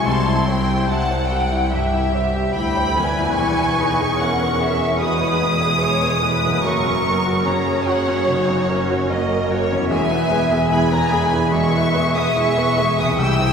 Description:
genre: cinematic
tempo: 73 BPM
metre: 4/4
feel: rubato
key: E lydian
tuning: A4 = 439 Hz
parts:
  - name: clear studio violin section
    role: melody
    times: 0.0-13.5 s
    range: F#5 to E6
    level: -23 LUFS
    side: equal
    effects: none
  - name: rich studio violin section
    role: second line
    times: 0.0-13.5 s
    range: A#4 to A5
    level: -23 LUFS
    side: left 1 dB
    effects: none
  - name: clear baby grand piano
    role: accompaniment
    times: 0.0-13.5 s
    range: C2 to C5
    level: -23 LUFS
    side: left 1 dB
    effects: none
  - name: rich studio viola section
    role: accompaniment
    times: 0.0-13.5 s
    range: G#3 to B4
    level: -25 LUFS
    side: right 3 dB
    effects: none
  - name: concert harp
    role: arpeggios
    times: 0.0-13.5 s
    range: E2 to G#4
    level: -28 LUFS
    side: left 4 dB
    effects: none
  - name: clear studio double bass section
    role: bass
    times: 0.0-13.5 s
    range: E1 to D2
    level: -26 LUFS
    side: right 2 dB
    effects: none
  - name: warm studio cello section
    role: bass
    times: 0.0-13.5 s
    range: C2 to F#2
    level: -25 LUFS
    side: right 2 dB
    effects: none
room: wet church reverb, RT60 3.0 s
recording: minimal, uncompressed stereo recording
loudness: -16 LUFS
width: side -6 dB against mid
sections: 0.0-13.5 A section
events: none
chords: 0.1 C; 3.4 E; 6.6 F#; 9.9 E

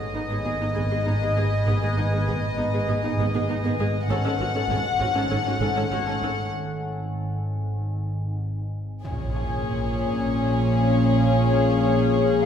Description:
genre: cinematic, suspense film score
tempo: 98 BPM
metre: 4/4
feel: straight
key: Bb minor from 9.0 s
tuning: A4 = 436 Hz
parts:
  - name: warm symphonic violin section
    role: melody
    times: 0.0-12.5 s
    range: Db5 to F#5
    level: -28 LUFS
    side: left 4 dB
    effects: none
  - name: deep dark ambient pad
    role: sustained chords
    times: 0.0-12.5 s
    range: Ab4 to G#5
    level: -31 LUFS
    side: left 4 dB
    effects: chorus, built-in reverb
  - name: organ-like drone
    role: drone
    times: 0.0-12.5 s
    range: G#1 to Bb1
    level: -28 LUFS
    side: equal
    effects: ensemble chorus, built-in reverb
  - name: rich studio viola section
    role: accompaniment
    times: 0.1-12.5 s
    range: B3 to A4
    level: -29 LUFS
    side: equal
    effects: none
  - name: dark symphonic double bass section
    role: bass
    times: 0.1-12.5 s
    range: G#1 to Bb1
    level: -28 LUFS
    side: right 3 dB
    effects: none
  - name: rich symphonic cello section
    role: bass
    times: 0.1-12.5 s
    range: G#2 to Bb2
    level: -28 LUFS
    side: equal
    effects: none
  - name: Celtic harp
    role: texture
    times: 1.4-12.5 s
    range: C#5 to G#5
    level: -39 LUFS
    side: left 4 dB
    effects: none
  - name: warm symphonic violin section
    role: second line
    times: 9.0-12.5 s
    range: Ab4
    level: -30 LUFS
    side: left 2 dB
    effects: none
  - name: impact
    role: sound effects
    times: 9.0-11.5 s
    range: none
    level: -33 LUFS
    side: equal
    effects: none
room: wet scoring stage reverb, RT60 1.9 s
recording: heard from further back in the room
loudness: -21 LUFS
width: side -8 dB against mid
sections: 0.0-9.0 A section; 9.0-12.5 B section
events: break 6.5-9.0; impact 9.0-11.5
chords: 0.0 G#m; 4.1 F#m/G#; 6.5 N.C.; 9.0 Bbm7

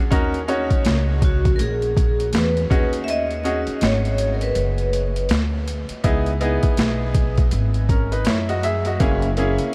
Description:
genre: hip hop, jazz-hop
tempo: 81 BPM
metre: 4/4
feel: swing 60% on 16ths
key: C# dorian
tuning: A4 = 440 Hz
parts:
  - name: bright upright piano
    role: accompaniment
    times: 0.1-9.7 s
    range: A#3 to E5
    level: -27 LUFS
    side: equal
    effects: none
  - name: upright bass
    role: bass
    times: 0.1-9.6 s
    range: F#1 to F#2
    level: -25 LUFS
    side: equal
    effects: none
  - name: boom bap sampler-style drum kit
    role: drums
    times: 0.1-9.7 s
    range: hi-hat, kick drum, snare drum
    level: -24 LUFS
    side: equal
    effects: overdrive
  - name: vibraphone with medium hard mallets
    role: melody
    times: 1.2-5.5 s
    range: F#4 to E5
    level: -28 LUFS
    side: equal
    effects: diffuse ambient delay
room: moderate huge ambient reverb, RT60 9.0 s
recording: dreamy mix soaked in reverb, vinyl crackle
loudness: -20 LUFS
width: mono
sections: 0.0-9.7 A section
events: kick muted 4.6-6.0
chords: 0.1 D#m7; 2.7 B6; 6.0 C#m9; 9.0 F#9

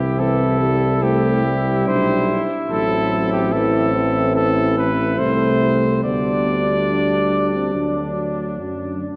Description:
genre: classical, brass quintet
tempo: 71 BPM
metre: 4/4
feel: rubato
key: unclear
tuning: A4 = 440 Hz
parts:
  - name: clear cornet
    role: melody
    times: 0.0-8.6 s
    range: G4 to D5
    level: -25 LUFS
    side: equal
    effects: none
  - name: warm trumpet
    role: second line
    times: 0.0-9.1 s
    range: D4 to E4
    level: -29 LUFS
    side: equal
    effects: none
  - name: mellow French horn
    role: accompaniment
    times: 0.0-9.2 s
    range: B3 to D4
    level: -27 LUFS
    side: equal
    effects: none
  - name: warm tuba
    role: bass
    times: 0.0-9.1 s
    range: A1 to F#2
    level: -25 LUFS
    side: equal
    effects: none
  - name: mellow euphonium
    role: accompaniment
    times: 0.2-9.1 s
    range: E3 to A3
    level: -25 LUFS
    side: equal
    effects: none
room: wet church reverb, RT60 3.1 s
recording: worn, warbling old tape, cassette tape, warbly pitch drift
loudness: -19 LUFS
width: mono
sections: 0.0-9.2 A section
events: none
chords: 0.0 C; 2.7 Am; 6.0 G/D; 7.7 D

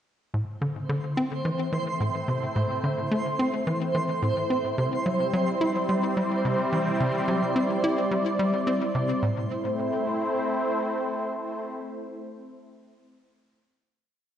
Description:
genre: ambient, sequencer-driven space music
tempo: 108 BPM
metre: 4/4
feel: straight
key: A minor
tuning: A4 = 439 Hz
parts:
  - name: sweeping resonant pad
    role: sustained chords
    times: 0.3-12.2 s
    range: G3 to D5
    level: -28 LUFS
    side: equal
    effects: chorus
  - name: tight sequencer bass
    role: riff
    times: 0.3-9.5 s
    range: A2 to E4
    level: -27 LUFS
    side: left 1 dB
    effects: ping-pong delay
  - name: twinkling granular texture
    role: texture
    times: 0.9-9.2 s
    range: C5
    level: -32 LUFS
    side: right 3 dB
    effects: built-in reverb
room: wet concert hall reverb, RT60 2.2 s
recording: worn, warbling old tape, cassette tape, warbly pitch drift, nothing above 10.4 kHz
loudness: -24 LUFS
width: side -10 dB against mid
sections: 0.3-9.2 A section; 9.2-11.4 final chord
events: fade-in on analog synth pad 0.3-9.2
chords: 0.3 Am; 4.8 C; 9.2 Am

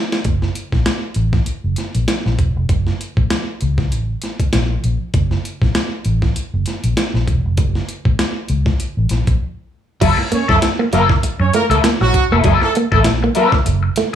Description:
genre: funk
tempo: 98 BPM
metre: 4/4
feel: swing 56% on 16ths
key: F# mixolydian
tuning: A4 = 440 Hz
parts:
  - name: breakbeat sampler-style drum kit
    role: drums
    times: 0.1-14.1 s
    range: crash cymbal, hi-hat, kick drum, snare drum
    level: -18 LUFS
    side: equal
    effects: none
  - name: vintage muted fingered electric bass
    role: bass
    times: 0.3-13.9 s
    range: E1 to F#2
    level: -17 LUFS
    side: equal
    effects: none
  - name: electric guitar at the edge of break-up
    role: accompaniment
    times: 10.0-13.9 s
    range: A#3 to A4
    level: -18 LUFS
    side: left 7 dB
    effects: wah
  - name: direct-recorded clean electric guitar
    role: riff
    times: 10.0-14.1 s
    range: F#3 to A#3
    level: -20 LUFS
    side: right 5 dB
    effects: none
  - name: warm horn section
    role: second line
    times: 10.3-13.5 s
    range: F#3 to C#5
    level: -20 LUFS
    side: right 3 dB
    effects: none
room: light reverb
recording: studio ambience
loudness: -14 LUFS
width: side -10 dB against mid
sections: 0.3-10.0 A section; 10.0-14.2 B section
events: drum fill 0.0; band accent 0.0; break 9.4-10.0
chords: 0.3 F#(#9); 10.0 F#7#9

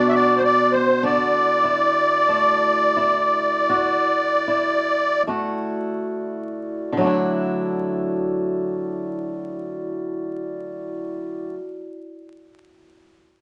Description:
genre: celtic folk, Celtic slow air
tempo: 34-52 BPM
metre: 4/4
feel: rubato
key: D major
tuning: A4 = 440 Hz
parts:
  - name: musette accordion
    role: melody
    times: 0.0-5.2 s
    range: C5 to E5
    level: -22 LUFS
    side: equal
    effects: none
  - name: mellow wooden flute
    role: second line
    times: 0.0-5.2 s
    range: C6 to E6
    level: -23 LUFS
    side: equal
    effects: none
  - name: picked swing-style acoustic guitar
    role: accompaniment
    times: 0.0-11.7 s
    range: B2 to F#4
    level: -27 LUFS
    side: equal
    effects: none
  - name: glass harmonica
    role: sustained chords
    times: 0.0-11.5 s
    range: B3 to D5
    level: -32 LUFS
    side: equal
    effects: none
room: moderate club reverb, RT60 0.7 s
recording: vinyl crackle, nothing above 10.8 kHz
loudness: -21 LUFS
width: mono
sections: 0.0-7.0 A section; 7.0-13.4 B section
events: slowing down 0.0-7.0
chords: 0.0 Bm; 1.0 Dadd9

